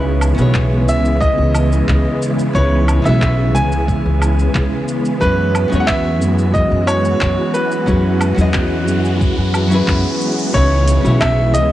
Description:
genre	sunset chillout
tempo	90 BPM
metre	4/4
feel	straight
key	C# minor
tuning	A4 = 439 Hz
part	nylon-string guitar	accompaniment	0.0-11.7 s	C#3 to E5	-22 LUFS	equal	auto-pan, cassette tape, analog delay
part	soft string machine	sustained chords	0.0-11.7 s	C#3 to F#4	-19 LUFS	equal	ensemble chorus, cassette tape
part	upright bass	bass	0.0-11.7 s	B1 to F#2	-16 LUFS	equal	none
part	deep house drum kit	drums	0.2-11.7 s	handclaps, hi-hat, shaker, woodblock	-25 LUFS	equal	studio reverb
part	electronic kick drum	drums	0.5-11.3 s	none	-19 LUFS	equal	studio reverb
part	bright grand piano	melody	0.9-11.7 s	B4 to G#5	-20 LUFS	right 1 dB	vintage 12-bit sampler grit, analog delay
part	riser and downlifter	sound effects	7.8-11.7 s	none	-28 LUFS	equal	none
room	light reverb, digital ambience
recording	home recording on cassette, nothing above 10.6 kHz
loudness	-13 LUFS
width	side -14 dB against mid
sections	0.0-10.5 A section; 10.5-11.7 B section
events	riser 7.8-10.5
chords	0.0 C#m7; 5.2 F#9sus4; 10.5 C#m7

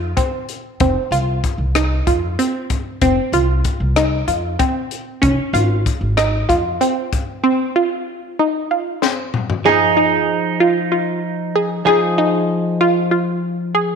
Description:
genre	progressive instrumental, band music in an uneven meter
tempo	190 BPM (eighths)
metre	7/8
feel	straight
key	F minor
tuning	A4 = 440 Hz
part	analog pluck	arpeggios	0.0-14.0 s	C4 to Ab4	-18 LUFS	right 1 dB	chorus, phaser
part	upright bass	bass	0.0-6.8 s	F1 to F2	-19 LUFS	equal	none
part	crisp fusion drum kit	drums	0.2-9.6 s	hi-hat, kick drum, rim click, snare drum, toms	-22 LUFS	left 3 dB	none
part	clean electric guitar	second line	9.7-14.0 s	Eb4	-19 LUFS	right 10 dB	none
part	hollow-body jazz guitar	accompaniment	9.7-14.0 s	F3 to Ab4	-19 LUFS	left 1 dB	double-tracked left and right
room	moderate plate reverb, RT60 1.6 s, small room ambience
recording	1960s-style stereo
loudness	-15 LUFS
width	side -6 dB against mid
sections	0.0-9.7 A section; 9.7-14.0 B section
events	drum fill 9.0-9.7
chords	0.0 N.C.; 0.8 F5; 5.2 Db/F (rootless); 7.4 F5; 9.7 Fm7

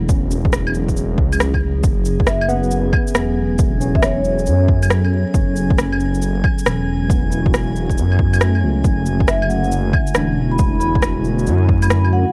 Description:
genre	future garage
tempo	137 BPM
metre	4/4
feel	swing 65% on 16ths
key	unclear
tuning	A4 = 437 Hz
part	overdriven tine electric piano	accompaniment	0.0-12.3 s	A3 to F#4	-28 LUFS	equal	fast tremolo, sidechain pumping, analog delay
part	warbly tape-like pad	sustained chords	0.0-12.3 s	D3 to A4	-27 LUFS	equal	chorus, built-in reverb, sidechain pumping
part	swelling detuned saw bass	bass	0.0-12.3 s	E1 to F#2	-21 LUFS	equal	sidechain pumping
part	electronic kick drum	drums	0.1-11.8 s	none	-20 LUFS	equal	overdrive
part	electronic shaker, rim click and claves	drums	0.1-12.1 s	none	-23 LUFS	equal	overdrive
part	drifting glass-harmonics texture	texture	2.1-12.3 s	G#5	-35 LUFS	equal	chorus, built-in reverb
part	vibraphone with soft mallets	melody	2.3-4.7, 9.3-12.3 s	C#5 to B5	-27 LUFS	equal	analog delay
room	little or no reverb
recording	vinyl crackle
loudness	-17 LUFS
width	mono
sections	0.0-12.3 A section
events	none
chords	0.0 E69; 8.8 D

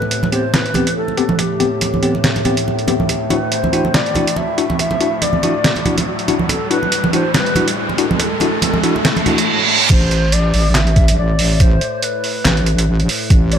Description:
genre	deep dubstep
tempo	141 BPM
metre	4/4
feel	swing 56% on 16ths, half-time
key	A dorian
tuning	A4 = 440 Hz
part	breathy bright low ney	melody	0.0-13.6 s	G4 to E5	-22 LUFS	left 1 dB	dub echo
part	overtone-sweeping drone	sustained chords	0.0-13.6 s	A2	-24 LUFS	left 1 dB	chorus, built-in reverb
part	congas	percussion	0.0-9.4 s	none	-21 LUFS	right 2 dB	none
part	riser and reverse cymbal	sound effects	0.9-9.9 s	none	-21 LUFS	right 1 dB	none
part	trip hop sampler-style drum kit	drums	0.1-13.6 s	crash cymbal, handclaps, hi-hat, snare drum	-19 LUFS	right 1 dB	small room ambience
part	bell-like tine electric piano	stabs	0.3-9.4 s	B3 to G4	-21 LUFS	moving between left 9 dB and right 1 dB	auto-pan, dub echo
part	electronic kick drum	drums	1.2-13.4 s	none	-13 LUFS	equal	high-pass filter on kick, small room ambience
part	wobble bass	bass	9.9-13.6 s	A1	-15 LUFS	equal	chorus
room	light reverb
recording	none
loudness	-13 LUFS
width	side -8 dB against mid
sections	0.0-9.9 A section; 9.9-13.6 B section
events	build-up 0.0-9.9; riser 0.9-9.5; reverse cymbal 9.0-9.9; drop 9.9-13.6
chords	0.0 Am7; 3.1 Dadd9; 9.9 Am

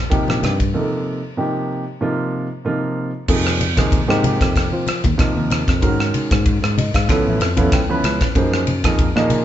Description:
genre	electric jazz fusion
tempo	95 BPM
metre	4/4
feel	swing 54% on 16ths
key	C dorian, F phrygian from 3.3 s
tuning	A4 = 440 Hz
part	dark grand piano	accompaniment	0.1-9.4 s	C3 to A5	-20 LUFS	right 2 dB	none
part	modern studio drum kit	drums	0.1-9.4 s	crash cymbal, kick drum, ride cymbal, rim click	-19 LUFS	equal	none
part	sustaining fretless electric bass	bass	0.3-9.4 s	A1 to F3	-21 LUFS	left 1 dB	none
part	congas	percussion	0.3-9.4 s	none	-25 LUFS	left 2 dB	none
room	moderate stone room reverb, RT60 1.4 s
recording	band playing live in one room, nothing above 7.8 kHz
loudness	-16 LUFS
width	side -11 dB against mid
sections	0.0-3.3 A section; 3.3-9.4 B section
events	break 0.7-3.3; grand piano fill 6.5-8.4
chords	0.0 Cm7; 3.3 Fm9; 5.8 Ab5; 7.1 Db7alt; 8.4 Gbmaj9#11

